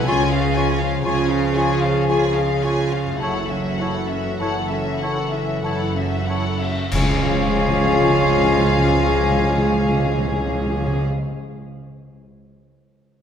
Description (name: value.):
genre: cinematic, emotional film score for orchestra.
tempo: 45-63 BPM.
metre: 3/4.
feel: rubato.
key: unclear.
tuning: A4 = 439 Hz.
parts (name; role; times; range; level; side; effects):
dark studio violin section; melody; 0.0-11.0 s; E5 to G#5; -26 LUFS; left 3 dB; none.
rich studio violin section; second line; 0.0-11.0 s; E#4 to A4; -31 LUFS; left 4 dB; none.
dark symphonic viola section; accompaniment; 0.0-11.0 s; C#4 to E#4; -29 LUFS; right 1 dB; none.
mellow French horn section; sustained chords; 0.0-11.0 s; E3 to A4; -25 LUFS; left 2 dB; none.
concert harp; arpeggios; 0.0-11.4 s; F#2 to E#5; -31 LUFS; left 8 dB; none.
dark cor anglais; second line; 0.1-11.0 s; C#5; -30 LUFS; right 1 dB; none.
small flute group; second line; 0.1-11.0 s; G#5 to A5; -28 LUFS; left 4 dB; none.
warm clarinet; second line; 0.1-11.0 s; E4 to E#4; -29 LUFS; left 2 dB; none.
rich symphonic cello section; bass; 0.1-11.0 s; C#2 to C#3; -25 LUFS; right 4 dB; none.
warm studio double bass section; bass; 0.1-11.0 s; F#1 to C#2; -27 LUFS; right 4 dB; none.
cymbal swell, clash cymbals and concert bass drum; percussion; 3.2-9.5 s; none; -28 LUFS; equal; none.
timpani; percussion; 6.9-11.0 s; C#3; -24 LUFS; equal; none.
room: wet concert hall reverb, RT60 2.1 s.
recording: none.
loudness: -17 LUFS.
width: side -8 dB against mid.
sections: 0.0-6.9 A section; 6.9-10.9 B section.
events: slowing down 0.0-6.9; band accent 6.9-8.2.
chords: 0.1 C#; 3.2 F#m7; 6.9 C#.